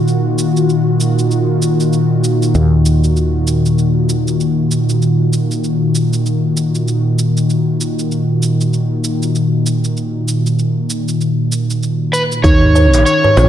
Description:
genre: organic downtempo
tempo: 97 BPM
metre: 4/4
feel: swing 59% on 16ths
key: Eb minor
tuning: A4 = 439 Hz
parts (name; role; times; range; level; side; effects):
- warm analog pad; sustained chords; 0.0-13.5 s; Bb2 to Gb4; -14 LUFS; equal; chorus, sidechain pumping
- woody fretless electric bass; bass; 0.0-13.5 s; Bb1 to Eb2; -13 LUFS; equal; tube saturation, sidechain pumping
- organic electronic drum kit; drums; 0.1-13.5 s; hi-hat, shaker, snare drum; -25 LUFS; right 2 dB; none
- overdriven slide guitar; melody; 12.1-13.5 s; Cb5 to Db5; -14 LUFS; right 1 dB; none
- kalimba; arpeggios; 12.4-13.5 s; Eb4 to Db5; -14 LUFS; equal; tape echo
- electronic kick drum; drums; 12.4-12.6 s; none; -12 LUFS; right 1 dB; none
- darbuka; percussion; 12.6-13.3 s; none; -18 LUFS; equal; none
room: moderate lush hall reverb, RT60 2.2 s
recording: dark, warm production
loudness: -12 LUFS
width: side -10 dB against mid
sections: 0.0-12.4 A section; 12.4-13.5 B section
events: none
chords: 0.0 Ebm; 12.4 Eb7(no3)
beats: | 0.07 0.69 1.31 1.93 | 2.55 3.17 3.78 4.40 | 5.02 5.64 6.26 6.88 | 7.50 8.11 8.73 9.35 | 9.97 10.59 11.21 11.82 | 12.44 13.06

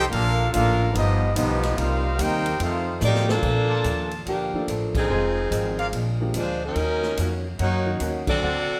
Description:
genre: jazz, big band swing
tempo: 144 BPM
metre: 4/4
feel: swing 65% on 8ths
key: Bb major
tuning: A4 = 438 Hz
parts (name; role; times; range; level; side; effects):
- clear trumpet section; melody; 0.0-3.0 s; B3 to G5; -28 LUFS; equal; none
- brilliant trombone section; second line; 0.0-3.0 s; F3 to G4; -30 LUFS; equal; none
- upright bass; bass; 0.0-8.7 s; F1 to Bb2; -28 LUFS; equal; none
- archtop guitar, miked and amplified; accompaniment; 0.1-8.7 s; F2 to Gb4; -34 LUFS; equal; none
- swinging big-band drum kit; drums; 0.1-8.3 s; crash cymbal, hi-hat, kick drum, ride cymbal, snare drum; -35 LUFS; equal; none
- warm saxophone section; melody; 3.0-8.8 s; F3 to D5; -27 LUFS; equal; none
- mellow trumpet section; stabs; 3.7-8.6 s; D4 to A5; -34 LUFS; equal; none
- warm grand piano; accompaniment; 4.5-8.4 s; D3 to A4; -33 LUFS; equal; none
room: moderate large studio reverb, RT60 1.3 s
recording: none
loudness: -23 LUFS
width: mono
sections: 0.0-3.4 A section; 3.4-8.8 B section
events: drum fill 3.0-3.4; band accent 4.9, 8.2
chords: 0.1 Bbmaj7; 0.9 G7b13; 1.8 Cm7; 2.6 F7; 3.4 Bbmaj7; 5.1 Fm7; 5.9 Bb7; 6.8 Ebm7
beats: | 0.11 0.53 0.94 1.36 | 1.77 2.19 2.60 3.02 | 3.43 3.85 4.26 4.68 | 5.09 5.51 5.92 6.34 | 6.75 7.17 7.58 8.00 | 8.41

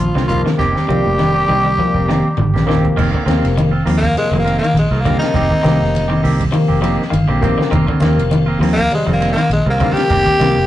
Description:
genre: afrobeat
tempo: 101 BPM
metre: 4/4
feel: swing 55% on 16ths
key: unclear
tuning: A4 = 440 Hz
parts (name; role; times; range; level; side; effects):
- raspy tenor saxophone; melody; 0.0-2.6 s; F4 to G4; -19 LUFS; equal; none
- clear trombone; second line; 0.0-2.6 s; F3 to G3; -27 LUFS; right 1 dB; none
- mellow trombone section; second line; 0.0-2.6 s; F3 to G3; -26 LUFS; right 3 dB; none
- electric guitar at the edge of break-up; arpeggios; 0.0-10.7 s; D3 to F3; -20 LUFS; left 2 dB; none
- fingered electric bass; bass; 0.0-10.7 s; F1 to Eb2; -18 LUFS; equal; none
- congas; percussion; 0.0-10.6 s; none; -22 LUFS; right 1 dB; none
- clean electric guitar; stabs; 0.2-10.6 s; Eb3 to G4; -21 LUFS; right 3 dB; slapback echo
- compact cocktail drum kit; drums; 0.2-10.6 s; crash cymbal, hi-hat, kick drum, ride cymbal, snare drum, toms; -24 LUFS; equal; none
- barky tine electric piano; accompaniment; 0.3-10.7 s; C3 to G5; -21 LUFS; left 3 dB; overdrive
- raspy tenor saxophone; melody; 4.0-10.7 s; Ab3 to G4; -17 LUFS; left 1 dB; none
room: wet booth ambience, RT60 0.2 s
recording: rough rehearsal-room recording, warm saturation, nothing above 10.7 kHz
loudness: -12 LUFS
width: side -13 dB against mid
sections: 0.0-3.0 A section; 3.0-10.7 B section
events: drum fill 0.6-3.0; tenor saxophone solo 3.0-10.7; tine electric piano fill 6.5-7.7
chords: 0.0 F7sus4; 5.3 Eb6/F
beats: | 0.58 1.18 1.77 2.37 | 2.97 3.56 4.16 4.75 | 5.34 5.94 6.53 7.13 | 7.72 8.32 8.91 9.51 | 10.10

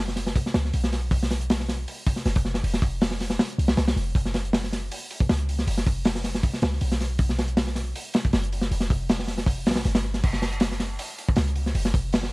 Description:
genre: drum and bass, jungle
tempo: 158 BPM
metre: 4/4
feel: straight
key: unclear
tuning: A4 = 440 Hz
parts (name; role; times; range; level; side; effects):
- warm 808-style bass; bass; 0.0-12.3 s; F1 to C#2; -26 LUFS; equal; none
- crunchy breakbeat drum kit; drums; 0.1-12.3 s; crash cymbal, hi-hat, kick drum, snare drum; -24 LUFS; equal; none
room: little or no reverb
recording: vinyl crackle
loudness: -22 LUFS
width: side -25 dB against mid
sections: 0.0-10.2 A section; 10.2-12.3 A section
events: drop 0.0-10.2, 10.2-12.3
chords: none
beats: 0.36 0.74 | 1.12 1.50 1.88 2.26 | 2.64 3.02 3.40 3.78 | 4.16 4.54 4.92 5.29 | 5.67 6.05 6.43 6.81 | 7.19 7.57 7.95 8.33 | 8.71 9.09 9.47 9.85 | 10.23 10.61 10.99 11.37 | 11.75 12.13

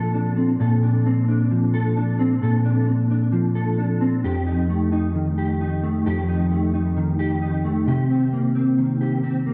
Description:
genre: dream pop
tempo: 66 BPM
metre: 4/4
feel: straight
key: unclear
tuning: A4 = 439 Hz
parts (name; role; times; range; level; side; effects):
- mellow electric guitar; solo; 0.0-9.5 s; F2 to A4; -21 LUFS; equal; ensemble chorus, digital delay
room: wet scoring stage reverb, RT60 1.8 s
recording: dark, warm production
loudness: -21 LUFS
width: mono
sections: 0.0-9.5 A section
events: none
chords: 0.0 Bbmaj9; 4.2 F9; 7.9 Cm7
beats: | 0.60 1.51 2.42 3.33 | 4.23 5.14 6.05 6.96 | 7.87 8.78

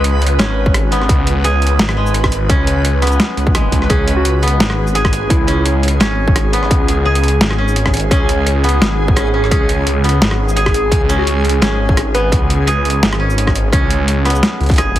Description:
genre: half-time drum and bass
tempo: 171 BPM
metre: 4/4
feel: swing 55% on 16ths, half-time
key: unclear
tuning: A4 = 441 Hz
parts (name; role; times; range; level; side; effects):
- koto; arpeggios; 0.0-15.0 s; G#3 to G#4; -19 LUFS; equal; vintage 12-bit sampler grit, dub echo
- phased detuned saw bass; bass; 0.0-15.0 s; G#1 to C#2; -16 LUFS; equal; phaser, tube saturation
- boom bap sampler-style drum kit; drums; 0.0-15.0 s; hi-hat, rim click, shaker, snare drum; -18 LUFS; equal; overdrive
- backwards swelling texture; texture; 0.0-15.0 s; G#4 to B4; -23 LUFS; right 1 dB; built-in reverb
- electronic kick drum; drums; 0.7-14.8 s; none; -16 LUFS; equal; distortion
- soft struck synth lead; melody; 3.9-5.8, 9.5-12.3 s; E4 to B4; -23 LUFS; equal; chorus, dub echo
room: little or no reverb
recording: heavily compressed radio sound, multiband compression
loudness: -12 LUFS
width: side -13 dB against mid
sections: 0.0-15.0 A section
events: kick drops out 14.8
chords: 0.0 C#5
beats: 0.04 0.39 0.74 | 1.09 1.44 1.79 2.15 | 2.50 2.85 3.20 3.55 | 3.90 4.25 4.60 4.95 | 5.30 5.65 6.00 6.36 | 6.71 7.06 7.41 7.76 | 8.11 8.46 8.81 9.16 | 9.51 9.86 10.21 10.57 | 10.92 11.27 11.62 11.97 | 12.32 12.67 13.02 13.37 | 13.72 14.07 14.43 14.78

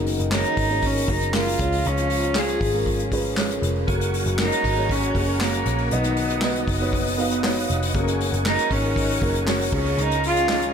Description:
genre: piano-driven pop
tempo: 118 BPM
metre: 4/4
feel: straight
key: F# major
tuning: A4 = 442 Hz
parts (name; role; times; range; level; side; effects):
- dark French horn section; second line; 0.0-10.7 s; B2 to F#4; -31 LUFS; left 4 dB; none
- felt-muted upright piano; accompaniment; 0.0-10.7 s; B2 to E#5; -27 LUFS; right 2 dB; none
- vintage muted picked electric bass; bass; 0.0-10.7 s; E#1 to C#2; -26 LUFS; equal; none
- unplugged drum kit; drums; 0.1-10.7 s; crash cymbal, handclaps, hi-hat, kick drum, snare drum; -26 LUFS; equal; none
- warm cello; melody; 0.3-10.7 s; A#3 to G#4; -25 LUFS; right 1 dB; none
- percussive tonewheel organ; sustained chords; 3.9-10.7 s; G#4 to D#6; -32 LUFS; equal; overdrive, chorus vibrato, slow rotary speaker
room: moderate huge ambient reverb, RT60 8.6 s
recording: dreamy mix soaked in reverb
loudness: -20 LUFS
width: side -7 dB against mid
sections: 0.0-10.7 A section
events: none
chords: 0.0 F#add9; 1.6 C#; 3.9 F#add9; 5.9 B; 7.9 F#add9; 9.7 C#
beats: 0.32 0.83 1.34 | 1.85 2.36 2.87 3.37 | 3.88 4.39 4.90 5.41 | 5.91 6.42 6.93 7.44 | 7.95 8.45 8.96 9.47 | 9.98 10.48

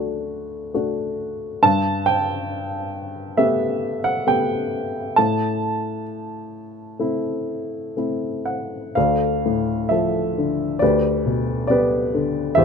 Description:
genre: classical, lyrical solo piano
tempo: 67 BPM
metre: 4/4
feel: rubato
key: A dorian, D dorian from 9.0 s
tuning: A4 = 439 Hz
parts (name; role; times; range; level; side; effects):
- dark upright piano; solo; 0.0-12.6 s; D2 to A5; -19 LUFS; equal; none
room: light reverb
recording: close, detailed microphones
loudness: -19 LUFS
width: side -6 dB against mid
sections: 0.0-9.0 A section; 9.0-12.6 B section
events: none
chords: 0.0 D; 1.6 Gadd9; 5.2 Am; 9.0 Dm; 10.8 G/D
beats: 0.74 | 1.62 2.50 3.37 4.26 | 5.17 6.07 6.99 7.96 | 8.96 9.91 10.81 11.70 | 12.58

